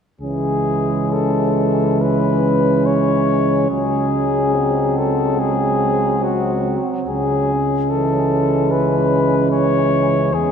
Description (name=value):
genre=classical, hymn-like piece for brass band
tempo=65-75 BPM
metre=4/4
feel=rubato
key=C# minor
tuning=A4 = 440 Hz
part: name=warm flugelhorn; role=melody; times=0.2-10.5 s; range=F#4 to C#5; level=-20 LUFS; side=left 6 dB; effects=none
part: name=mellow French horn section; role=second line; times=0.2-10.5 s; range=B#3 to C#4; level=-22 LUFS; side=right 8 dB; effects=none
part: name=brilliant trombone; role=accompaniment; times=0.2-10.5 s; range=E3 to F#3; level=-24 LUFS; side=right 3 dB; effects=none
part: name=clear euphonium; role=accompaniment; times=0.2-10.5 s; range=G#3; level=-24 LUFS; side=left 2 dB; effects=none
part: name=dark tuba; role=bass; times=0.2-10.5 s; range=C#2 to E2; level=-22 LUFS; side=right 1 dB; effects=none
room=wet church reverb, RT60 3.0 s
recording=none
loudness=-15 LUFS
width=side -7 dB against mid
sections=0.2-10.5 A section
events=none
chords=0.2 C#m; 3.7 G#7/C#; 7.1 C#m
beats=| 0.22 1.13 2.02 2.87 | 3.71 4.55 5.40 6.24 | 7.08 7.90 8.72 9.52 | 10.35